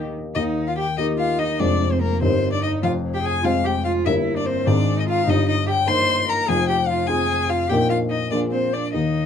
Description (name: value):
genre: quick classical-period movement for piano trio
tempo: 98 BPM (dotted quarters)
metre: 6/8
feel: straight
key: Eb major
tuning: A4 = 440 Hz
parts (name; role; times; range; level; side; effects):
- rich cello; second line; 0.0-9.3 s; Eb3 to C5; -26 LUFS; right 6 dB; none
- warm baby grand piano; accompaniment; 0.0-9.3 s; F1 to C5; -21 LUFS; left 2 dB; none
- rich violin; melody; 0.3-9.3 s; Bb4 to C6; -23 LUFS; left 6 dB; none
room: light reverb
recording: dark, warm production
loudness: -18 LUFS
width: side -8 dB against mid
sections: 0.4-9.3 A section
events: none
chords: 0.4 Eb; 1.6 Ddim/F; 2.2 Eb/G; 2.8 Fm; 4.1 Edim/G; 4.7 Fm6/Ab; 5.3 Eb/G; 6.5 Fm; 7.7 Eb5/Bb; 8.3 Bb5